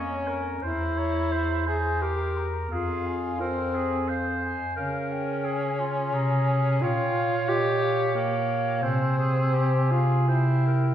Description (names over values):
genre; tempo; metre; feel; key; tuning
classical, lyrical piece for single-reed quartet; 87 BPM; 3/4; rubato; F minor; A4 = 440 Hz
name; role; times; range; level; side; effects
mellow clarinet; melody; 0.0-10.9 s; Eb5 to Db6; -35 LUFS; left 4 dB; none
bright clarinet; second line; 0.0-10.9 s; F4 to Db5; -31 LUFS; right 4 dB; none
mellow tenor saxophone; accompaniment; 0.0-10.9 s; Bb3 to Ab4; -28 LUFS; left 2 dB; none
mellow bass clarinet; bass; 0.0-10.9 s; E2 to Db3; -27 LUFS; right 1 dB; none
room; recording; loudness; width
wet concert hall reverb, RT60 1.8 s; heard from further back in the room; -23 LUFS; side -10 dB against mid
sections
0.0-10.9 A section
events
none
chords
0.0 Bbm/F; 0.6 C7/E; 2.7 Fm; 4.8 Db; 6.8 Gm7b5/Bb; 8.8 Fmadd9/C; 10.3 C